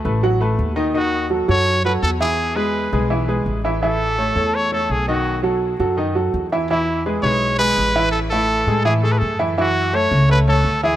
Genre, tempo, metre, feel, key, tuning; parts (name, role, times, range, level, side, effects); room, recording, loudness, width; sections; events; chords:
latin; 167 BPM; 4/4; straight; A major; A4 = 440 Hz
bright upright piano; accompaniment; 0.0-11.0 s; D#3 to F#5; -20 LUFS; right 1 dB
upright bass; bass; 0.1-11.0 s; A1 to A2; -21 LUFS; equal
bright trumpet; melody; 1.0-11.0 s; E4 to C#5; -20 LUFS; equal
light reverb; -16 LUFS; side -12 dB against mid
0.0-9.6 A section; 9.6-11.0 B section
0.0 D6 (rootless); 0.9 F#m13; 2.4 E; 3.8 A; 5.3 B7; 6.7 E; 8.1 A5; 9.6 F#m7